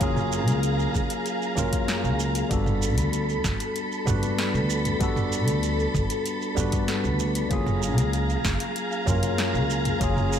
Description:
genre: sunset chillout.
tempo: 96 BPM.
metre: 4/4.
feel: straight.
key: unclear.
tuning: A4 = 440 Hz.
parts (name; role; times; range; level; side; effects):
barky tine electric piano; accompaniment; 0.0-10.4 s; F#3 to B4; -28 LUFS; left 1 dB; overdrive, auto-pan, digital delay.
soft string machine; sustained chords; 0.0-10.4 s; G#4 to B5; -30 LUFS; equal; ensemble chorus.
upright bass; bass; 0.0-10.4 s; F#1 to G2; -26 LUFS; equal; none.
deep house drum kit; drums; 0.0-10.4 s; hi-hat, shaker, snare drum, toms; -31 LUFS; right 1 dB; none.
electronic kick drum; drums; 0.0-10.1 s; none; -28 LUFS; equal; none.
congas; percussion; 0.9-9.4 s; none; -34 LUFS; right 2 dB; none.
room: moderate plate reverb, RT60 1.9 s.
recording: bright 1980s-style digital production.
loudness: -22 LUFS.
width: side -9 dB against mid.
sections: 0.0-10.4 A section.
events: none.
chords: 0.0 F#maj9; 2.5 Gmaj9; 7.5 F#maj9.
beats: | 0.01 0.64 1.26 1.89 | 2.51 3.13 3.76 4.38 | 5.01 5.63 6.26 6.88 | 7.51 8.13 8.76 9.38 | 10.01.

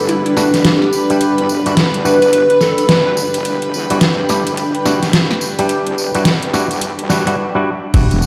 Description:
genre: glitch hop.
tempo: 107 BPM.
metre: 4/4.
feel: swing 62% on 16ths.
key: E minor.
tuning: A4 = 440 Hz.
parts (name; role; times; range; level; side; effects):
plucky unison lead; melody; 0.0-3.1 s; D4 to B4; -19 LUFS; equal; dub echo.
rich studio string section; sustained chords; 0.0-8.3 s; D3 to F#5; -22 LUFS; equal; sidechain pumping.
wobble bass; bass; 0.0-8.3 s; E1 to E2; -25 LUFS; equal; chorus, tube saturation, high-pass filter.
granular cloud pad; texture; 0.0-7.4 s; G3 to G5; -23 LUFS; equal; built-in reverb, sidechain pumping.
dubstep drum kit; drums; 0.1-8.2 s; crash cymbal, hi-hat, snare drum; -18 LUFS; equal; none.
tambourine; percussion; 0.1-8.3 s; none; -29 LUFS; equal; none.
auto-wah clav; stabs; 0.4-8.3 s; G3 to G4; -22 LUFS; equal; sidechain pumping, low-pass filter, dub echo.
electronic kick drum; drums; 7.9-8.1 s; none; -14 LUFS; equal; none.
room: wet plate reverb, RT60 1.9 s.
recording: played on a big sound system in a bare room, stone room reverb.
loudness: -14 LUFS.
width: mono.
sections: 0.0-7.9 A section.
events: build-up 0.0-7.9; filter sweep on clav 0.0-7.9.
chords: 0.0 Em9.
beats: 0.09 0.65 | 1.21 1.77 2.33 2.89 | 3.45 4.01 4.58 5.14 | 5.70 6.26 6.82 7.38 | 7.94.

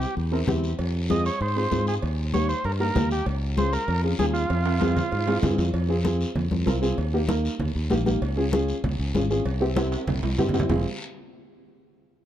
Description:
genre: latin, cumbia.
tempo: 194 BPM.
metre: 4/4.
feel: straight.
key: F minor.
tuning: A4 = 437 Hz.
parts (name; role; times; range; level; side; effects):
combo organ; melody; 0.0-5.4 s; F4 to Eb5; -29 LUFS; right 2 dB; slapback echo.
dark upright piano; accompaniment; 0.0-10.8 s; Bb3 to Bb4; -27 LUFS; equal; none.
fingered electric bass; bass; 0.0-10.8 s; F1 to Ab2; -26 LUFS; equal; none.
guiro; percussion; 0.0-10.8 s; none; -40 LUFS; left 3 dB; none.
congas; percussion; 0.2-10.8 s; none; -29 LUFS; left 2 dB; none.
cowbell and timbales; percussion; 0.8-10.8 s; none; -34 LUFS; right 4 dB; none.
room: light reverb.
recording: dark, warm production.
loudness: -22 LUFS.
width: side -11 dB against mid.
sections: 0.0-5.7 A section; 5.7-10.7 B section; 10.7-11.9 C section.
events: drum fill 4.5-5.7, 9.8-10.7.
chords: 0.0 C; 0.8 Fm; 2.0 Eb; 3.3 Db; 4.5 Fm; 7.0 Eb; 8.2 Db; 9.5 C; 10.7 Fm.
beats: 0.17 0.48 | 0.79 1.10 1.41 1.72 | 2.03 2.34 2.65 2.96 | 3.27 3.57 3.88 4.19 | 4.50 4.81 5.12 5.43 | 5.74 6.05 6.36 6.67 | 6.98 7.29 7.60 7.91 | 8.22 8.53 8.84 9.15 | 9.46 9.77 10.07 10.38 | 10.70.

